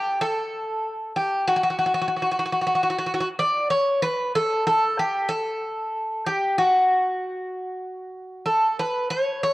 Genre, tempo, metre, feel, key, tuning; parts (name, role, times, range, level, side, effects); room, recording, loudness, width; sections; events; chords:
greek folk; 94 BPM; 4/4; straight; A4 = 440 Hz
Greek bouzouki; solo; 0.0-9.5 s; F#4 to D5; -21 LUFS; equal; cassette tape
wet spring reverb, RT60 2.4 s; home recording on cassette; -21 LUFS; side -18 dB against mid
0.0-9.5 A section